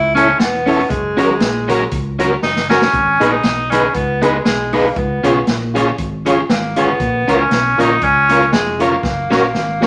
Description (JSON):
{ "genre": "ska", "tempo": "118 BPM", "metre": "4/4", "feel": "swing 54% on 8ths", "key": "unclear", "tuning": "A4 = 440 Hz", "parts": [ { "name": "warm tenor saxophone", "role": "melody", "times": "0.0-9.9 s", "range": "G#3 to E4", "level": "-18 LUFS", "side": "equal", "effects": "none" }, { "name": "fingered electric bass", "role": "bass", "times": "0.0-9.9 s", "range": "E1 to C#2", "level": "-26 LUFS", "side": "equal", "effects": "none" }, { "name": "electric guitar at the edge of break-up", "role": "accompaniment", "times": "0.1-9.9 s", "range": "B3 to C#5", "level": "-21 LUFS", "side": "equal", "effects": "none" }, { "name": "mellow tonewheel organ", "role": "stabs", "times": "0.2-9.9 s", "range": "C#4 to C#5", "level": "-21 LUFS", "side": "equal", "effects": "chorus vibrato, fast rotary speaker" }, { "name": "vintage drum kit", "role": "drums", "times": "0.2-9.9 s", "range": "hi-hat, kick drum, snare drum", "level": "-22 LUFS", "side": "equal", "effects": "none" } ], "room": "wet studio reverb, RT60 0.8 s", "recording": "none", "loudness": "-15 LUFS", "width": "mono", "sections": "0.0-9.9 A section", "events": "drum fill 2.4-2.9, 9.0-9.9", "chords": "0.0 A; 0.9 F#; 2.9 G#m; 5.0 C#; 7.0 A#m; 9.0 F#" }